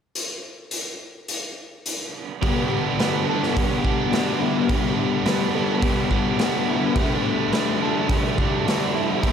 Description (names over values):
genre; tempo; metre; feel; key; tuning
rock, shoegaze and dream pop; 106 BPM; 4/4; straight; G major; A4 = 440 Hz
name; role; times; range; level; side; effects
raw garage drum kit; drums; 0.2-9.3 s; hi-hat, kick drum, snare drum; -25 LUFS; equal; none
direct-recorded clean electric guitar; arpeggios; 2.4-9.3 s; E4 to B4; -30 LUFS; right 7 dB; wide subtle chorus, analog delay
biting overdriven guitar; riff; 2.4-9.3 s; G2 to D4; -24 LUFS; right 8 dB; reverse reverb
raw garage guitar; riff; 2.4-9.3 s; G2 to D4; -24 LUFS; left 8 dB; overdrive, lush chorus
room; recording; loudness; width
wet plate reverb, RT60 1.9 s, small room ambience; dreamy mix soaked in reverb; -20 LUFS; side -8 dB against mid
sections
0.1-2.4 A section; 2.4-9.3 B section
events
none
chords
0.1 N.C.; 2.4 G; 7.0 Dsus4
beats
| 0.15 0.71 1.28 1.85 | 2.42 2.99 3.55 4.12 | 4.69 5.25 5.82 6.39 | 6.96 7.52 8.09 8.66 | 9.22